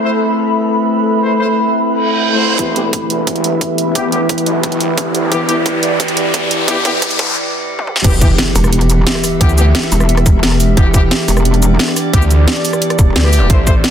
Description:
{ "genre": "dark technical drum and bass", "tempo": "176 BPM", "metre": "4/4", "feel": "straight", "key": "E minor", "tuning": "A4 = 440 Hz", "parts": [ { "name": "metallic inharmonic drone", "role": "sustained chords", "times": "0.0-13.9 s", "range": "E3 to B4", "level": "-18 LUFS", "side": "left 1 dB", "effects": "chorus, built-in reverb, sidechain pumping" }, { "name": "warm brass ensemble", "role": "stabs", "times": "0.0-13.7 s", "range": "E3 to C5", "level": "-21 LUFS", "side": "left 3 dB", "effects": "low-pass filter, ping-pong delay" }, { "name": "airy breathy pad", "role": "texture", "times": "0.0-13.9 s", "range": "E4 to B5", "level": "-20 LUFS", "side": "right 1 dB", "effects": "chorus, sidechain pumping" }, { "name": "reverse cymbal, riser and impact", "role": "sound effects", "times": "2.0-9.4 s", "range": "none", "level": "-20 LUFS", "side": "right 1 dB", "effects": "none" }, { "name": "snarling distorted saw bass", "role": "bass", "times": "2.6-13.8 s", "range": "E1 to D2", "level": "-17 LUFS", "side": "equal", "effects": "overdrive, sidechain pumping, high-pass filter" }, { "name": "drum and bass drum kit", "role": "drums", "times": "2.6-13.9 s", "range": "crash cymbal, hi-hat, rim click, shaker, snare drum, toms", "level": "-17 LUFS", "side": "right 1 dB", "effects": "overdrive, high-pass filter on hats, high-pass filter on toms, high-pass filter on snare, high-pass filter on cymbals, high-pass filter on perc" }, { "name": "electronic kick drum", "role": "drums", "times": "2.6-13.7 s", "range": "none", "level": "-12 LUFS", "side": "equal", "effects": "overdrive, high-pass filter on kick" }, { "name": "pulsing pluck wobble bass", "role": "bass", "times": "8.6-13.5 s", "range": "E1 to D2", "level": "-12 LUFS", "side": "equal", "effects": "chorus" } ], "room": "light reverb", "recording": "dense, heavily limited modern master, high-pass filter", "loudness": "-11 LUFS", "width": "side -9 dB against mid", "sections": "0.0-2.6 A section; 2.6-8.0 B section; 8.0-13.9 C section", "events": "filter sweep on synth drone 0.0-2.6, 2.6-8.0; reverse cymbal 2.0-2.6; build-up 2.6-8.0; riser 2.6-7.4; filter sweep 2.6-8.0; drum fill 5.3-7.4, 7.8; break 7.4-8.0; drop 8.0-13.9; impact 8.0-9.4", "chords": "0.0 Am; 2.6 Em" }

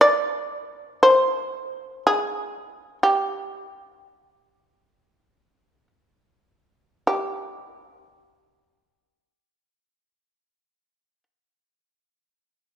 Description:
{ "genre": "japanese traditional, Japanese chamber music", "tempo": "free time", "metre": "none", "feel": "none", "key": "unclear", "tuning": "A4 = 440 Hz", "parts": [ { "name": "shamisen", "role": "solo", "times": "0.0-11.2 s", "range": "G4 to D5", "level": "-19 LUFS", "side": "equal", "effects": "none" } ], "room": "moderate concert hall reverb, RT60 1.9 s", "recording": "minimal, uncompressed stereo recording", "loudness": "-20 LUFS", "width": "side -9 dB against mid", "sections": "0.0-7.1 A section; 7.1-10.6 B section", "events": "slowing down 0.6-7.1", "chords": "none" }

